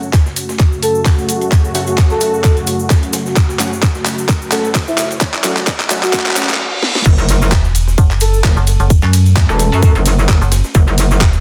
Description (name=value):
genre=bass house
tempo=130 BPM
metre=4/4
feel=swing 55% on 16ths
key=F# minor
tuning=A4 = 440 Hz
part: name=sweeping resonant pad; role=sustained chords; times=0.0-11.4 s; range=F#2 to F#4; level=-25 LUFS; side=equal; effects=chorus, sidechain pumping
part: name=orchestra-hit-like synth stab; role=stabs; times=0.0-6.5 s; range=F#3 to F#4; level=-26 LUFS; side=equal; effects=built-in reverb, sidechain pumping, delay
part: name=cabasa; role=percussion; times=0.0-11.4 s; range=none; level=-28 LUFS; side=equal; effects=none
part: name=riser, reverse cymbal and impact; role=sound effects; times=2.9-8.9 s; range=none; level=-28 LUFS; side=equal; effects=none
part: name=breakbeat sampler-style drum kit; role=drums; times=0.1-11.4 s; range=hi-hat, snare drum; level=-32 LUFS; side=equal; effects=none
part: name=electronic kick drum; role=drums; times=0.1-11.3 s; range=none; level=-13 LUFS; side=equal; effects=none
part: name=garage drum kit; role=drums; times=0.1-11.3 s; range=crash cymbal, handclaps, hi-hat, ride cymbal, snare drum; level=-22 LUFS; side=equal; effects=none
part: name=breathy flute-like synth lead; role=melody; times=0.8-10.0 s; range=E4 to A4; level=-22 LUFS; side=equal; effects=lush chorus, delay
part: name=metallic wobble bass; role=bass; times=7.1-11.2 s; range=E1 to F#2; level=-15 LUFS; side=equal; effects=chorus, overdrive, sidechain pumping
part: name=metallic FM bass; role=bass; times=7.5-11.4 s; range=E1 to F#2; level=-14 LUFS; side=equal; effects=sidechain pumping
room=light reverb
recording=dense, heavily limited modern master, high-pass filter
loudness=-13 LUFS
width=mono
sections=0.0-7.1 A section; 7.1-11.4 B section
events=build-up 0.0-7.1; drum fill 0.0-6.6, 6.8; filter sweep 0.0-7.1; reverse cymbal 6.1-7.1; drop 7.1-11.4; impact 7.1-8.9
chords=0.0 F#m